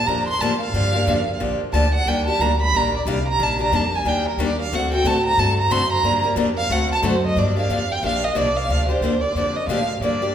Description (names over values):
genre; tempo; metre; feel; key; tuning
acoustic string swing (jazz manouche); 181 BPM; 4/4; swing 60% on 8ths; G minor; A4 = 440 Hz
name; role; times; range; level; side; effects
dark violin; melody; 0.0-10.3 s; Bb4 to C6; -21 LUFS; right 2 dB; none
upright bass; bass; 0.0-10.3 s; Bb1 to A2; -24 LUFS; equal; none
picked steel-string acoustic guitar; accompaniment; 0.1-10.3 s; D3 to A4; -23 LUFS; left 2 dB; none
room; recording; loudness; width
wet recital hall reverb, RT60 1.5 s; recorded in a church or concert hall; -18 LUFS; side -9 dB against mid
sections
0.0-7.4 A section; 7.4-10.3 B section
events
violin solo 0.0-7.4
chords
0.0 Gm7; 2.1 Ebmaj7; 4.7 D7; 6.0 Gm7; 6.7 D7; 7.4 Gm7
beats
0.07 0.40 | 0.73 1.07 1.40 1.73 | 2.06 2.40 2.73 3.06 | 3.39 3.72 4.05 4.39 | 4.72 5.05 5.38 5.71 | 6.04 6.37 6.71 7.04 | 7.37 7.70 8.03 8.36 | 8.69 9.02 9.36 9.69 | 10.02